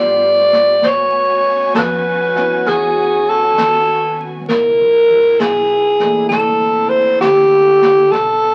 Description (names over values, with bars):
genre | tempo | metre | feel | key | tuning
jazz | 66 BPM | 4/4 | swing 67% on 8ths | unclear | A4 = 439 Hz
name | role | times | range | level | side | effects
growling alto saxophone | melody | 0.0-8.5 s | G4 to D5 | -14 LUFS | equal | none
warm concert grand piano | accompaniment | 0.0-8.1 s | E3 to B4 | -28 LUFS | equal | none
warm studio string section | sustained chords | 0.0-8.5 s | B2 to G#5 | -28 LUFS | equal | none
upright bass | bass | 0.0-8.5 s | G#1 to A2 | -34 LUFS | equal | none
jazz brush drum kit | drums | 0.5-8.5 s | brushed snare drum, hi-hat, snare drum | -26 LUFS | equal | none
room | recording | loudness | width
wet studio reverb, RT60 0.6 s | very old 78 rpm record, vinyl crackle | -13 LUFS | mono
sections
0.0-8.5 A section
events
none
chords
0.0 G9; 0.8 Amaj13; 4.5 C#m7; 6.3 C13